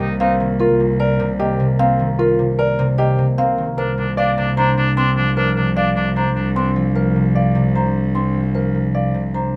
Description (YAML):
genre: classical, minimalist pattern music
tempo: 151 BPM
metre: 4/4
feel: straight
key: unclear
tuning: A4 = 440 Hz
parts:
  - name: marimba with soft mallets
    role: melody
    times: 0.0-9.6 s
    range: Bb4 to C6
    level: -24 LUFS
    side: equal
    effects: none
  - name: bright oboe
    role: second line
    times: 0.0-0.3, 3.8-6.7 s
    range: D4 to Eb4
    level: -25 LUFS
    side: equal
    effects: none
  - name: concert harp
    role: accompaniment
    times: 0.0-9.6 s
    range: C3 to D4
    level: -22 LUFS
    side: equal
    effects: none
  - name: warm grand piano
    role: arpeggios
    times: 0.0-9.6 s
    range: C4 to D5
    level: -26 LUFS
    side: equal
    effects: none
  - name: rich cello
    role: bass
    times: 0.0-9.6 s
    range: C2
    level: -24 LUFS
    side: equal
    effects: none
room: light reverb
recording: none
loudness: -18 LUFS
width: mono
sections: 0.0-9.6 A section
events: none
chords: 0.0 Cm9; 3.8 Bb/C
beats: 0.20 | 0.60 1.00 1.39 1.79 | 2.19 2.59 2.98 3.38 | 3.78 4.17 4.57 4.97 | 5.37 5.76 6.16 6.56 | 6.96 7.35 7.75 8.15 | 8.55 8.94 9.34